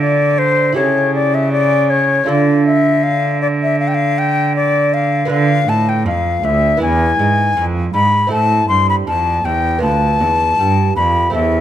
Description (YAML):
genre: classical, baroque-style sonata movement with continuo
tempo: 79 BPM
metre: 4/4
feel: rubato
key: D minor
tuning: A4 = 436 Hz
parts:
  - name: bright baroque flute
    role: melody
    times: 0.0-11.6 s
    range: C5 to C6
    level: -15 LUFS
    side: left 3 dB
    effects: none
  - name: lute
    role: accompaniment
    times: 0.0-11.6 s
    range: D2 to B4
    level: -21 LUFS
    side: right 3 dB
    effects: none
  - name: rich cello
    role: bass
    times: 0.0-11.6 s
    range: D2 to D3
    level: -16 LUFS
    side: right 2 dB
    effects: none
room: moderate recital hall reverb, RT60 1.8 s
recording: close, detailed microphones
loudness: -12 LUFS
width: side -11 dB against mid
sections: 0.0-11.6 A section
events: none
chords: 0.0 Dm; 0.8 A7/C#; 2.3 Dm; 5.3 Bdim; 6.8 E; 8.3 Am; 9.8 Bdim/D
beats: 0.01 0.77 1.53 | 2.29 3.05 3.80 4.55 | 5.30 6.06 6.81 7.56 | 8.31 9.07 9.82 10.58 | 11.34